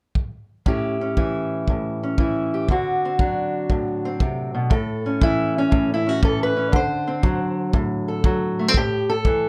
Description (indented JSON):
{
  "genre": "acoustic country blues, solo or duo",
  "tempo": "119 BPM",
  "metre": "4/4",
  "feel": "swing 67% on 8ths",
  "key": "unclear",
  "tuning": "A4 = 440 Hz",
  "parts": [
    { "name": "kick drum", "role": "drums", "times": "0.2-9.4 s", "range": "none", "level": "-24 LUFS", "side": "equal", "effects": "none" },
    { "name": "fingerpicked steel-string acoustic guitar", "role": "melody", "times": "0.7-9.5 s", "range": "A2 to C5", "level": "-23 LUFS", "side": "equal", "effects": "none" }
  ],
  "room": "little or no reverb",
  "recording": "close, detailed microphones",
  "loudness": "-22 LUFS",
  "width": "mono",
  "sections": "0.7-4.7 A section; 4.7-9.5 B section",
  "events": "steel-string acoustic guitar solo 4.7-9.5",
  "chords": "0.0 N.C.; 0.7 A7; 2.7 D7; 4.7 A; 6.7 D7; 8.7 A7(no3)"
}